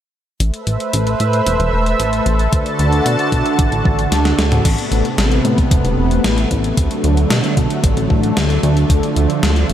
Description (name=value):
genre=synthwave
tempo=113 BPM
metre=4/4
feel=straight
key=A minor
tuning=A4 = 438 Hz
part: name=analog string pad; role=sustained chords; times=0.4-9.7 s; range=C3 to A5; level=-17 LUFS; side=right 1 dB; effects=ensemble chorus, sidechain pumping
part: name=chorused synth bass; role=bass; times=0.4-9.7 s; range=D1 to B2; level=-17 LUFS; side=equal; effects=sidechain pumping
part: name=gated 80s digital drum machine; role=drums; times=0.4-9.7 s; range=crash cymbal, hi-hat, snare drum, toms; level=-21 LUFS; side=equal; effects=gated reverb, gated reverb snare, overdrive
part: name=electronic kick drum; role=drums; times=2.5-9.0 s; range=none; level=-16 LUFS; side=equal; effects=overdrive
room=moderate huge ambient reverb, RT60 9.3 s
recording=dreamy mix soaked in reverb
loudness=-13 LUFS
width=side -10 dB against mid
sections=0.4-4.7 A section; 4.7-9.7 B section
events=filter sweep on analog synth bass 0.4-4.7; drum fill 4.1-4.7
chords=0.4 Amadd9; 2.5 D; 4.7 Amadd9; 6.8 D; 8.9 Dm